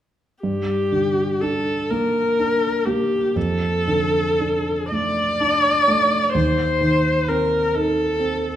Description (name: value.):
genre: classical, romantic duo for viola and grand piano.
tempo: 38-45 BPM (dotted quarters).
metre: 12/8.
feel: rubato.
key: G minor.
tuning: A4 = 440 Hz.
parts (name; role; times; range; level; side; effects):
rich viola; melody; 0.4-8.6 s; G4 to D5; -19 LUFS; left 1 dB; none.
dark grand piano; accompaniment; 0.4-8.6 s; Eb2 to Eb4; -22 LUFS; right 2 dB; none.
room: wet recital hall reverb, RT60 1.4 s.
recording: none.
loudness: -18 LUFS.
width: side -11 dB against mid.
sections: 0.4-8.6 A section.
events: none.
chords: 0.4 Gm; 3.4 Dm/F; 6.3 Cm/Eb.